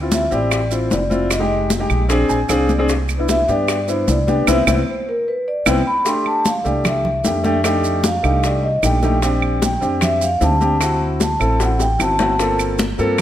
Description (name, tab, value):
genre	Afro-Cuban jazz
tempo	152 BPM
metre	4/4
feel	straight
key	C major, F major from 6.1 s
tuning	A4 = 444 Hz
part	warm concert grand piano	accompaniment	0.0-13.2 s	Ab3 to Ab5	-20 LUFS	left 1 dB	none
part	upright bass	bass	0.0-13.2 s	F1 to G2	-21 LUFS	right 1 dB	none
part	vibraphone with soft mallets	melody	0.1-12.6 s	Bb4 to C6	-20 LUFS	equal	none
part	bongos	percussion	0.1-13.2 s	none	-27 LUFS	left 6 dB	none
part	congas	percussion	0.1-13.2 s	none	-24 LUFS	left 1 dB	none
part	maracas	percussion	0.1-13.2 s	none	-30 LUFS	right 8 dB	none
part	claves	percussion	0.5-13.2 s	none	-26 LUFS	right 9 dB	none
room	light reverb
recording	close, detailed microphones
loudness	-15 LUFS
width	side -11 dB against mid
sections	0.0-6.1 A section; 6.1-13.2 A section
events	vibraphone solo 0.0-13.2; grand piano fill 2.1-2.9; band accent 4.5-6.1; drum fill 5.5-6.1, 11.6-12.4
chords	0.0 Dm7; 1.3 Fm7; 2.1 Bb9; 2.9 Cmaj7; 6.1 F69; 7.6 F13; 9.2 Bb69; 10.8 D7; 12.4 Gm11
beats	0.12 0.51 0.91 | 1.31 1.70 2.10 2.50 | 2.89 3.29 3.68 4.08 | 4.47 4.87 5.27 5.66 | 6.06 6.45 6.85 7.25 | 7.64 8.04 8.43 8.83 | 9.23 9.62 10.02 10.41 | 10.81 11.21 11.60 12.00 | 12.39 12.79 13.19